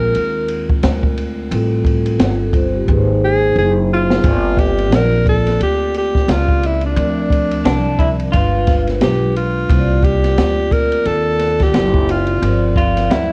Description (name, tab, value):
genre	hip hop, jazz-hop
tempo	88 BPM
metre	4/4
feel	swing 59% on 16ths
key	unclear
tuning	A4 = 439 Hz
part	breathy alto saxophone	melody	0.0-12.8 s	D4 to Bb4	-21 LUFS	equal	cassette tape, plate reverb, analog delay
part	vibraphone with soft mallets	accompaniment	0.0-13.3 s	F3 to D5	-24 LUFS	equal	plate reverb
part	upright bass	bass	0.0-13.3 s	Gb1 to Eb2	-20 LUFS	equal	none
part	open jazz drum kit	drums	0.1-13.3 s	hi-hat, kick drum, ride cymbal, snare drum	-20 LUFS	equal	cassette tape
part	electric guitar through a small old amp	second line	7.7-13.3 s	D4 to F4	-22 LUFS	equal	plate reverb
room	moderate small room reverb, RT60 0.6 s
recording	home recording on cassette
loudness	-15 LUFS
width	mono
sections	0.0-4.2 A section; 4.2-13.3 B section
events	alto saxophone solo 0.0-4.2; drum fill 2.9-4.2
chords	0.0 Abadd9; 1.5 G9sus4; 2.9 Ab9; 4.2 Gm7; 7.0 C9sus4; 8.3 G7b9; 9.7 Cm11; 12.4 Gm7